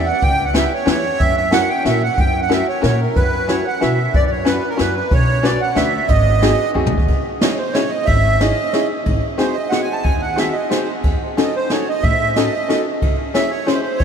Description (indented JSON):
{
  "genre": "musette waltz",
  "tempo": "183 BPM",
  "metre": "3/4",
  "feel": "straight",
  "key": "C# harmonic minor from 7.1 s",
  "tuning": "A4 = 440 Hz",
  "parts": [
    { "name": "accordion", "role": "melody", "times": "0.0-14.0 s", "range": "A#4 to A5", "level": "-19 LUFS", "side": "right 3 dB", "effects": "light tremolo tuning, tape echo" },
    { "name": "open-back banjo", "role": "accompaniment", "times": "0.0-13.8 s", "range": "B#3 to C#5", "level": "-20 LUFS", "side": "left 2 dB", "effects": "none" },
    { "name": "upright bass", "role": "bass", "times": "0.0-14.0 s", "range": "G#1 to B2", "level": "-21 LUFS", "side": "equal", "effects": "none" },
    { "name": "jazz brush drum kit", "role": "drums", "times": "0.2-14.0 s", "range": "hi-hat, kick drum, ride cymbal, snare drum, toms", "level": "-21 LUFS", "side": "equal", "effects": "none" }
  ],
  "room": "wet cathedral reverb, RT60 6.8 s",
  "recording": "in a vast, echoing space",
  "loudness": "-15 LUFS",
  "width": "side -7 dB against mid",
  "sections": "0.0-7.1 A section; 7.1-14.0 B section",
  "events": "drum fill 6.8-7.1",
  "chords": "0.0 C#m7b5; 1.2 F#7; 3.2 F#7sus4; 5.1 Bmadd9; 6.1 G#7; 7.1 C#madd9; 9.1 G#7; 11.0 D#m7b5; 13.0 C#m"
}